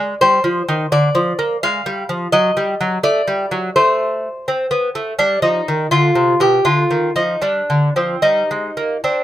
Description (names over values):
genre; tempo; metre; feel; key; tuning
classical, baroque-style dance for lute; 74-86 BPM (dotted quarters); 12/8; rubato; unclear; A4 = 439 Hz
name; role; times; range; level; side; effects
lute; solo; 0.0-9.2 s; B2 to F5; -14 LUFS; equal; none
room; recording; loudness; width
light reverb; none; -14 LUFS; side -13 dB against mid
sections
0.0-9.2 A section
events
none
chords
0.0 Ddim; 2.3 F#dim7; 5.2 G; 8.2 Gsus4